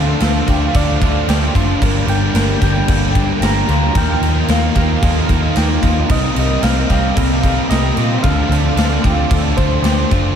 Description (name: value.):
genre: rock, shoegaze and dream pop.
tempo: 112 BPM.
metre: 4/4.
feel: straight.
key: unclear.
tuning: A4 = 440 Hz.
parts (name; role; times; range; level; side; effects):
soft struck synth lead; melody; 0.0-10.4 s; C5 to Bb5; -24 LUFS; right 1 dB; chorus, phaser, tape echo.
analog string pad; sustained chords; 0.0-10.4 s; Bb3 to G5; -26 LUFS; right 1 dB; ensemble chorus.
electric guitar through a small old amp; arpeggios; 0.0-10.4 s; F4 to Bb4; -27 LUFS; equal; ensemble chorus, tape echo.
crunchy overdriven guitar; riff; 0.0-10.4 s; G2 to Eb4; -21 LUFS; right 7 dB; reverse reverb.
thick fuzz guitar; riff; 0.0-10.4 s; G2 to Eb4; -21 LUFS; left 10 dB; distortion, analog chorus.
vintage muted picked electric bass; bass; 0.0-10.3 s; F#1 to Bb2; -17 LUFS; equal; none.
big rock drum kit; drums; 0.2-10.2 s; crash cymbal, kick drum, snare drum; -18 LUFS; equal; none.
room: moderate plate reverb, RT60 2.4 s.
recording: dreamy mix soaked in reverb.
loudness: -12 LUFS.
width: side -8 dB against mid.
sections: 0.0-10.4 A section.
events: none.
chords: 0.0 Dm7; 1.8 Gm; 4.0 Ebsus2; 6.1 Cm7; 8.2 Dm7.